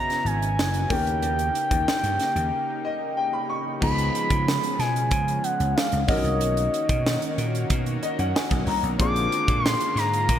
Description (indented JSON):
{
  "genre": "polished 1980s jazz-funk pop",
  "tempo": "93 BPM",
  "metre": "4/4",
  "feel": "straight",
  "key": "unclear",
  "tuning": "A4 = 440 Hz",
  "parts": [
    { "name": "expressive synth lead", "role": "melody", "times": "0.0-10.4 s", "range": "D#5 to D6", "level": "-26 LUFS", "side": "equal", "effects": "chorus" },
    { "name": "clear grand piano", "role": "accompaniment", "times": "0.0-10.4 s", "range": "E#3 to C#6", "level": "-31 LUFS", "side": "left 3 dB", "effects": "lush chorus" },
    { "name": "lush unison pad", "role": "sustained chords", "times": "0.0-10.4 s", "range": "C#3 to G4", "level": "-31 LUFS", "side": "right 1 dB", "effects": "chorus" },
    { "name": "crisp fusion drum kit", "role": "drums", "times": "0.1-10.4 s", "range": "crash cymbal, hi-hat, kick drum, snare drum", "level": "-27 LUFS", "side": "right 1 dB", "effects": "gated reverb" },
    { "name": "vintage slap bass", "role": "bass", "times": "0.2-10.4 s", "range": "F#1 to C#3", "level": "-26 LUFS", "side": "equal", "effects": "none" }
  ],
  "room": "moderate lush hall reverb, RT60 2.7 s",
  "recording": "bright 1980s-style digital production",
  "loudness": "-21 LUFS",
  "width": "side -10 dB against mid",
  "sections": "0.0-3.8 A section; 3.8-10.4 B section",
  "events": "break 2.5-3.8; grand piano fill 2.5-3.8, 7.7-9.0",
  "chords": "0.0 F#7sus4; 0.9 D#7; 3.8 C#7; 6.1 Bmaj7; 9.0 A#7",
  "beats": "0.58 | 1.23 1.88 2.52 3.17 | 3.82 4.46 5.11 5.76 | 6.41 7.05 7.70 8.35 | 8.99 9.64 10.29"
}